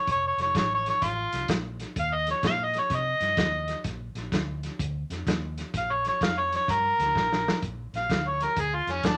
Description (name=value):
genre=electric blues shuffle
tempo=127 BPM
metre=4/4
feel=swing 65% on 8ths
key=unclear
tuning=A4 = 439 Hz
part: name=overdriven harmonica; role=melody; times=0.0-9.2 s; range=Db4 to F5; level=-28 LUFS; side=equal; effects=none
part: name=vintage muted fingered electric bass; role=bass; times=0.1-9.2 s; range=F1 to C3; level=-37 LUFS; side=equal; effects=none
part: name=vintage drum kit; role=drums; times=0.1-9.2 s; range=hi-hat, kick drum, snare drum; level=-32 LUFS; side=equal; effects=none
room=moderate studio reverb, RT60 0.5 s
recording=none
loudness=-27 LUFS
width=mono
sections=0.0-7.6 A section; 7.6-9.2 B section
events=harmonica solo 0.0-7.6; drum fill 7.1-7.6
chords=0.1 F; 2.0 Eb5; 3.8 Bb